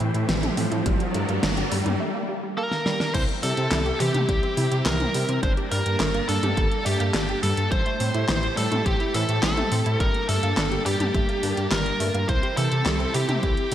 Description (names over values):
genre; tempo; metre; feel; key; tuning
synthwave; 105 BPM; 4/4; straight; G dorian; A4 = 439 Hz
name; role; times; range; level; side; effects
string machine, full ensemble; sustained chords; 0.0-13.7 s; G3 to A5; -31 LUFS; equal; ensemble chorus, sidechain pumping
analog pluck; arpeggios; 0.0-13.7 s; E3 to G4; -31 LUFS; right 2 dB; chorus, digital delay
dark detuned saw bass; bass; 0.0-13.7 s; G1 to C3; -26 LUFS; equal; none
pop drum kit; drums; 0.0-13.7 s; crash cymbal, handclaps, hi-hat, snare drum, toms; -29 LUFS; equal; small room ambience
riser; sound effects; 0.0-2.0 s; none; -30 LUFS; right 1 dB; none
electronic kick drum; drums; 0.9-13.5 s; none; -25 LUFS; equal; small room ambience
biting lead guitar; melody; 2.6-13.7 s; G4 to C5; -26 LUFS; equal; overdrive, digital delay
room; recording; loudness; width
moderate lush hall reverb, RT60 2.5 s; bright 1980s-style digital production; -21 LUFS; side -11 dB against mid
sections
0.0-3.1 A section; 3.1-13.7 B section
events
riser 0.0-2.0; filter sweep on synth arpeggio sound 0.0-3.1; break 2.0-3.1; drum fill 2.7-3.1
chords
0.0 Am7; 0.9 Gmadd9; 3.1 C; 5.4 Gmadd9; 7.7 Am7; 10.0 Gmadd9; 12.3 C